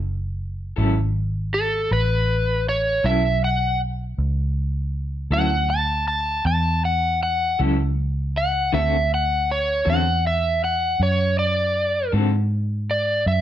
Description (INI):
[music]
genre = blues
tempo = 53 BPM (dotted quarters)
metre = 12/8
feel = straight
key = F# minor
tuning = A4 = 441 Hz
[part]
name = vintage muted fingered electric bass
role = bass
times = 0.0-13.4 s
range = F#1 to G#2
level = -23 LUFS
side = equal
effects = none
[part]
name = electric guitar through a small old amp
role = accompaniment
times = 0.8-12.4 s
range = D3 to A4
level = -26 LUFS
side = left 2 dB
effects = tremolo
[part]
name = overdriven slide guitar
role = melody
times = 1.5-13.4 s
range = A4 to A5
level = -21 LUFS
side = equal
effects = plate reverb
[sound]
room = light reverb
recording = nothing above 10.5 kHz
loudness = -19 LUFS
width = side -11 dB against mid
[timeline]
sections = 0.0-13.4 A section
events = electric slide guitar solo 0.0-13.4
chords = 0.0 F#m7; 8.7 D7